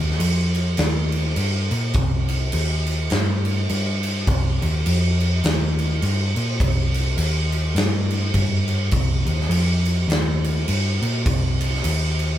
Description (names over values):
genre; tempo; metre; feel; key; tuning
stoner and doom metal; 103 BPM; 4/4; swing 59% on 8ths; C minor; A4 = 440 Hz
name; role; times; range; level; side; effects
hollow-body short-scale picked electric bass; bass; 0.0-12.4 s; C2 to Bb2; -20 LUFS; equal; overdrive
big rock drum kit; drums; 0.1-12.3 s; crash cymbal, kick drum, snare drum; -23 LUFS; right 1 dB; none
room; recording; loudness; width
little or no reverb; band playing live in one room; -19 LUFS; side -12 dB against mid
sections
0.0-12.4 A section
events
none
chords
none